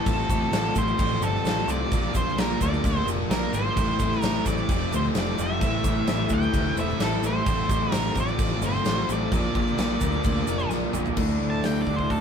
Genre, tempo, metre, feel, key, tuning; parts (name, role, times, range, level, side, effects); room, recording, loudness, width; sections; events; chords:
classic rock; 130 BPM; 4/4; straight; A4 = 440 Hz
octave-fuzz lead guitar; melody; 0.0-12.2 s; A4 to A5; -30 LUFS; right 1 dB; distortion
picked steel-string acoustic guitar; accompaniment; 0.0-12.2 s; A2 to Bb4; -38 LUFS; left 1 dB
overdriven electric guitar; riff; 0.0-12.2 s; F2 to F4; -30 LUFS; left 6 dB; spring reverb
raw garage guitar; riff; 0.0-12.2 s; F2 to D4; -30 LUFS; right 4 dB; overdrive
reed electric piano; accompaniment; 0.1-12.2 s; E4 to D5; -38 LUFS; left 3 dB
growling picked electric bass; bass; 0.1-12.2 s; E1 to D2; -28 LUFS; equal; overdrive
huge arena drum kit; drums; 0.1-12.2 s; crash cymbal, hi-hat, kick drum, snare drum, toms; -27 LUFS; equal
tube shaker; percussion; 0.1-11.1 s; -41 LUFS; right 9 dB
moderate small room reverb, RT60 0.5 s; band playing live in one room; -22 LUFS; side -7 dB against mid
0.0-11.2 A section; 11.2-12.2 B section
drum fill 10.7-11.2; lead electric guitar solo 11.2-12.2
0.1 F/A; 1.9 Bb; 3.8 Am; 4.7 F; 5.6 Am; 7.5 F/A; 9.3 Bb; 11.2 Dsus2